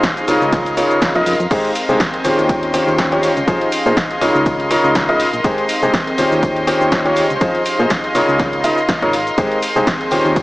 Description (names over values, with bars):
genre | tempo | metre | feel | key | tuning
piano house | 122 BPM | 4/4 | swing 56% on 16ths | Ab major | A4 = 444 Hz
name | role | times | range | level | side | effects
warm chamber violin section | sustained chords | 0.0-10.4 s | Eb5 to C6 | -23 LUFS | left 1 dB | sidechain pumping
clear upright piano | riff | 0.0-10.4 s | Db3 to Eb5 | -16 LUFS | equal | sidechain pumping, tape echo
electronic kick drum | drums | 0.0-10.4 s | none | -21 LUFS | equal | none
punchy analog drum machine | drums | 0.0-10.4 s | cabasa, crash cymbal, hi-hat, ride cymbal, snare drum | -23 LUFS | equal | none
tambourine | percussion | 0.0-10.4 s | none | -37 LUFS | right 1 dB | none
airy breathy pad | texture | 0.0-10.4 s | C4 to G5 | -22 LUFS | equal | chorus, sidechain pumping
solid FM bass | bass | 0.3-10.4 s | Eb1 to Bb2 | -25 LUFS | equal | sidechain pumping
room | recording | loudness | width
light reverb, digital ambience | small speaker sound | -13 LUFS | side -18 dB against mid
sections
0.0-10.4 A section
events
none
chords
0.0 Fm7; 0.5 Db69; 1.5 Abmaj7; 2.5 Eb13; 3.5 Fm7; 4.5 Db69; 5.4 Abmaj7; 6.4 Eb13; 7.4 Fm7; 8.4 Db69; 9.4 Abmaj7